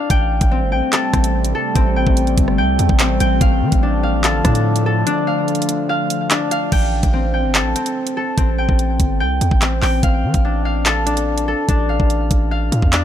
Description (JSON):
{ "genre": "hip hop, drill", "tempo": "145 BPM", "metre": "4/4", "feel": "half-time", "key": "A minor", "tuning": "A4 = 440 Hz", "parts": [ { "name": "concert harp", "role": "arpeggios", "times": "0.0-13.0 s", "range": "C4 to G5", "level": "-19 LUFS", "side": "left 2 dB", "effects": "ping-pong delay" }, { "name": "warbly tape-like pad", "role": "sustained chords", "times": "0.6-6.7 s", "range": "C3 to A3", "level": "-24 LUFS", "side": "equal", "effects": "chorus, built-in reverb" }, { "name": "hard-hitting 808-style bass", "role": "bass", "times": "0.1-13.0 s", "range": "G1 to E3", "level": "-18 LUFS", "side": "equal", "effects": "none" }, { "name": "drill drum kit", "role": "drums", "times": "0.1-13.0 s", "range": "crash cymbal, handclaps, hi-hat, kick drum, rim click", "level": "-17 LUFS", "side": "equal", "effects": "none" } ], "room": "digital ambience", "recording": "none", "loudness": "-14 LUFS", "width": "side -10 dB against mid", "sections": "0.0-6.7 A section; 6.7-13.0 B section", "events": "break 5.1-6.7", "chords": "0.1 Am7; 3.4 Dm/A; 6.7 Am7; 10.0 Dm/A" }